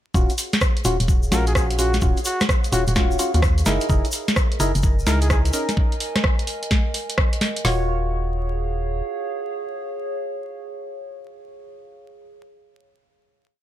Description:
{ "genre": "UK garage, two-step garage", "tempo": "128 BPM", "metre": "4/4", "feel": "swing 65% on 16ths", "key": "Eb minor", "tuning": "A4 = 440 Hz", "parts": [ { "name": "percussive organ stab", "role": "stabs", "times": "0.1-12.2 s", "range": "Db4 to Db5", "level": "-26 LUFS", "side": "left 1 dB", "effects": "lush chorus, dub echo" }, { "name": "organ-like FM bass", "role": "bass", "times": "0.1-9.0 s", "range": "Eb1 to Eb2", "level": "-21 LUFS", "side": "equal", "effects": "none" }, { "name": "garage drum kit", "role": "drums", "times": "0.1-7.8 s", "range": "hi-hat, kick drum, snare drum", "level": "-20 LUFS", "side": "equal", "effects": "none" }, { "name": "warbly tape-like pad", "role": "texture", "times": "0.4-12.2 s", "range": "Ab4 to Ab5", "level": "-32 LUFS", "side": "right 1 dB", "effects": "chorus, built-in reverb, sidechain pumping" }, { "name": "tube shaker", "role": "percussion", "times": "0.2-5.8 s", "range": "none", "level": "-32 LUFS", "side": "left 3 dB", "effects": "none" }, { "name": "punchy analog drum machine", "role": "drums", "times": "0.3-7.6 s", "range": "hi-hat, rim click, snare drum", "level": "-24 LUFS", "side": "equal", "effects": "none" }, { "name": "trumpet with bucket mute", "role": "melody", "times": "1.3-5.4 s", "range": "Gb4 to Bb4", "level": "-29 LUFS", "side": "equal", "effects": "dub echo" } ], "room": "digital ambience", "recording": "vinyl crackle", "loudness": "-19 LUFS", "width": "side -12 dB against mid", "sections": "0.1-7.6 drop; 7.6-11.4 final chord", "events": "drop 0.1-7.6", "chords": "0.1 Ebm9; 3.7 Gb13; 5.5 Absus24/Db; 7.6 Ebm9", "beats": "| 0.14 0.61 1.08 1.55 | 2.02 2.49 2.96 3.43 | 3.90 4.36 4.83 5.30 | 5.77 6.24 6.71 7.18 | 7.64 8.11 8.58 9.05 | 9.52 9.99 10.46 10.93" }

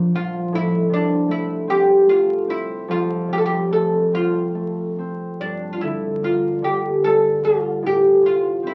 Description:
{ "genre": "celtic folk, Celtic slow air", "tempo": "49 BPM (dotted quarters)", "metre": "6/8", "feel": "uneven beats, rubato", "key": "unclear", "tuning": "A4 = 440 Hz", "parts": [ { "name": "oud", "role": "melody", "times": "0.0-8.7 s", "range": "D4 to A4", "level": "-21 LUFS", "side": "equal", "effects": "none" }, { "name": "concert harp", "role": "accompaniment", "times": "0.0-8.7 s", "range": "F2 to C4", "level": "-26 LUFS", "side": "equal", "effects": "none" } ], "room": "wet studio reverb, RT60 0.6 s", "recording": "very old 78 rpm record, vinyl crackle", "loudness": "-20 LUFS", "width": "mono", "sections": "0.0-8.7 A section", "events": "none", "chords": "0.0 Bb; 0.5 Am; 2.9 F; 5.4 Gm; 7.8 Am", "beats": "| 0.52 1.68 | 2.89 4.12 | 5.39 6.63 | 7.83" }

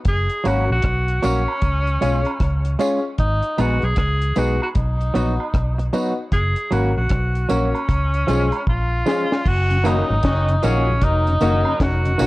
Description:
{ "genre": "roots reggae", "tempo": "77 BPM", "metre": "4/4", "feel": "swing 62% on 16ths", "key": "unclear", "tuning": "A4 = 440 Hz", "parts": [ { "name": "deep reggae drum kit", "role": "drums", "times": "0.0-12.3 s", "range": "crash cymbal, hi-hat, kick drum, rim click, snare drum", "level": "-22 LUFS", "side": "equal", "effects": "none" }, { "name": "bright tenor saxophone", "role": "melody", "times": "0.1-12.3 s", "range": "C#4 to G#4", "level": "-24 LUFS", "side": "equal", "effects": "none" }, { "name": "vintage muted fingered electric bass", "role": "bass", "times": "0.1-12.3 s", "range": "E#1 to C#2", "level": "-20 LUFS", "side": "equal", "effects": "none" }, { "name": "semi-hollow electric guitar", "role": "accompaniment", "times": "0.4-12.3 s", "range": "D#3 to G#4", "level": "-24 LUFS", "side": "right 3 dB", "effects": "none" }, { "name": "warm upright piano", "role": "stabs", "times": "0.4-12.3 s", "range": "G#3 to C#5", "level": "-24 LUFS", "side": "left 4 dB", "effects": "none" }, { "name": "tambourine and woodblock", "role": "percussion", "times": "0.5-12.3 s", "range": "none", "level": "-34 LUFS", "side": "right 5 dB", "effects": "none" }, { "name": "mellow tonewheel organ", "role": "accompaniment", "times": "9.7-12.3 s", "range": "F#2 to D#4", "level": "-28 LUFS", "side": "left 2 dB", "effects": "none" }, { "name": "clear horn section", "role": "second line", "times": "9.8-12.2 s", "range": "A#2 to A#4", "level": "-28 LUFS", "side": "left 2 dB", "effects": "none" } ], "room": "small room ambience", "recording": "cassette tape", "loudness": "-17 LUFS", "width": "side -19 dB against mid", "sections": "0.0-9.5 A section; 9.5-12.3 B section", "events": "drum fill 8.7-9.5", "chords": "0.1 F#; 1.6 C#; 3.2 G#m; 4.8 B; 6.3 F#; 7.9 C#; 9.5 F#6", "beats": "| 0.06 0.84 1.62 2.41 | 3.19 3.97 4.76 5.54 | 6.32 7.11 7.89 8.67 | 9.45 10.24 11.02 11.80" }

